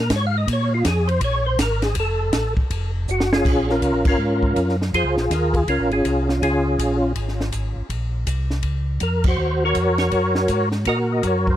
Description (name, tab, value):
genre	soul jazz organ trio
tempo	162 BPM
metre	4/4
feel	swing 63% on 8ths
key	Bb minor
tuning	A4 = 440 Hz
part	percussive tonewheel organ	melody	0.0-11.6 s	Db4 to F5	-21 LUFS	equal	slow rotary speaker, chorus vibrato, tape echo
part	mellow tonewheel organ	bass	0.0-11.6 s	F1 to Bb2	-22 LUFS	equal	chorus vibrato, slow rotary speaker
part	compact cocktail drum kit	drums	0.1-11.5 s	crash cymbal, hi-hat, kick drum, ride cymbal, snare drum	-25 LUFS	equal	none
room	little or no reverb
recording	dry, close 1970s-style studio recording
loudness	-18 LUFS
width	side -12 dB against mid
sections	0.0-3.4 A section; 3.4-11.6 B section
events	tonewheel organ solo 0.0-3.4; drum fill 3.1-3.4; band accent 4.0, 9.2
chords	0.5 Bb5; 2.0 F; 3.4 Bbm7; 9.4 Ebm7